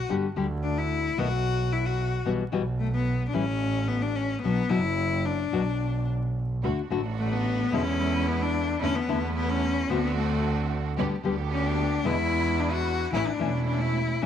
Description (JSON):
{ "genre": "tango", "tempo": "110 BPM", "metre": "4/4", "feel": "rubato", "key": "D major", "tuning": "A4 = 440 Hz", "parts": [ { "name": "clear cello", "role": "second line", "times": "0.0-14.3 s", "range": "A3 to F#4", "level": "-28 LUFS", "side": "left 5 dB", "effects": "none" }, { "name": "warm double bass", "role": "bass", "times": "0.0-14.3 s", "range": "E1 to E2", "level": "-28 LUFS", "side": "right 2 dB", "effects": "none" }, { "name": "nylon-string guitar", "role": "accompaniment", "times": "0.1-14.3 s", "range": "B2 to G4", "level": "-28 LUFS", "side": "left 5 dB", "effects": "none" }, { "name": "clear symphonic string section", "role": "stabs", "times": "6.6-14.3 s", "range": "D3 to G4", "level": "-33 LUFS", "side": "right 10 dB", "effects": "none" } ], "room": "moderate spring reverb, RT60 1.2 s, small room ambience", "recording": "1960s-style stereo, vinyl crackle", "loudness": "-24 LUFS", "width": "side -9 dB against mid", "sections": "0.0-14.3 A section", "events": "cello solo 0.0-14.3", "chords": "0.1 G5; 1.2 B5; 2.3 Emadd9/B; 3.3 A; 4.4 Bm; 6.6 D; 7.7 E7; 8.8 Asus4/E; 9.9 D7; 11.0 G/D; 12.1 E7; 13.1 A" }